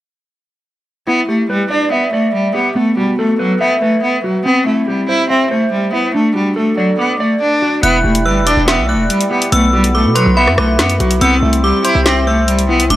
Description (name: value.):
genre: hip hop, drill.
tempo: 142 BPM.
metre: 4/4.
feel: half-time.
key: E minor.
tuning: A4 = 443 Hz.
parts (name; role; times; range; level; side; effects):
clear cello; melody; 1.1-13.0 s; F#3 to E4; -14 LUFS; equal; none.
mellow electric guitar; accompaniment; 1.1-13.0 s; B3 to D6; -17 LUFS; right 1 dB; lush chorus.
metallic FM bell; second line; 7.8-13.0 s; B5 to F#6; -19 LUFS; left 1 dB; chorus, tape echo.
glass harmonica; sustained chords; 7.8-13.0 s; D4 to C6; -26 LUFS; left 1 dB; none.
distorted 808-style bass; bass; 7.8-13.0 s; D1 to B2; -16 LUFS; equal; distortion.
drill drum kit; drums; 7.8-13.0 s; hi-hat, rim click, snare drum; -17 LUFS; left 1 dB; none.
room: little or no reverb.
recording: dry, gritty hardware recording.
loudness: -11 LUFS.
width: side -14 dB against mid.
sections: 1.1-7.8 A section; 7.8-13.0 B section.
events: none.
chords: 1.1 Em7; 2.8 B7sus4; 4.5 C; 6.1 D; 7.8 Em7; 9.5 B7sus4; 11.2 C.